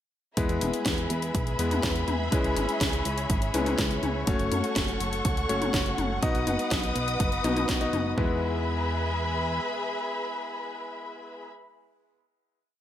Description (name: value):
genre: italo disco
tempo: 123 BPM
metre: 4/4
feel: straight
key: E major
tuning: A4 = 440 Hz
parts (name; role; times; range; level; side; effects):
- dark symphonic string section; sustained chords; 0.4-11.5 s; G#4 to D#6; -31 LUFS; left 1 dB; none
- clear electric grand piano; stabs; 0.4-11.5 s; G#3 to D#5; -31 LUFS; left 2 dB; ping-pong delay
- chorused synth bass; bass; 0.4-9.6 s; E1 to F#2; -31 LUFS; right 1 dB; none
- electronic kick drum; drums; 0.4-8.3 s; none; -29 LUFS; right 1 dB; overdrive
- house drum kit; drums; 0.4-8.0 s; hi-hat, snare drum, toms; -31 LUFS; left 1 dB; overdrive, gated reverb
room: light reverb, digital ambience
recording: none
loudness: -25 LUFS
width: side -11 dB against mid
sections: 0.4-8.2 verse; 8.2-12.1 final chord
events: none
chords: 0.4 E; 2.3 C#m7; 4.3 F#m; 6.2 B; 8.2 E